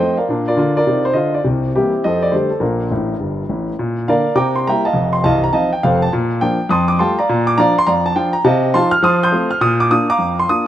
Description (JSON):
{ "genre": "jazz, stride piano", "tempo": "206 BPM", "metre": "4/4", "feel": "swing 64% on 8ths", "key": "Bb major", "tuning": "A4 = 440 Hz", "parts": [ { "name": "warm concert grand piano", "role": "solo", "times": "0.0-10.7 s", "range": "C1 to G6", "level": "-14 LUFS", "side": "equal", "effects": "none" } ], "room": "light reverb, small room ambience", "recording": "rough home demo mix", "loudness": "-14 LUFS", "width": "side -12 dB against mid", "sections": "0.0-3.8 A section; 3.8-10.7 A section", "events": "grand piano fill 2.9-3.8", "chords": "0.3 Bb; 1.4 C7; 2.0 F69; 2.6 Bb; 4.4 C7; 4.9 F7; 6.1 Bb; 6.7 Fadd9; 7.3 Bb; 8.4 F7/C; 9.0 F7; 9.6 Bb", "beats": "| 0.28 0.57 0.86 1.15 | 1.45 1.74 2.03 2.32 | 2.62 2.91 3.20 3.49 | 3.78 4.08 4.37 4.66 | 4.95 5.24 5.53 5.82 | 6.12 6.41 6.70 6.99 | 7.28 7.57 7.86 8.15 | 8.45 8.74 9.03 9.32 | 9.61 9.90 10.19 10.48" }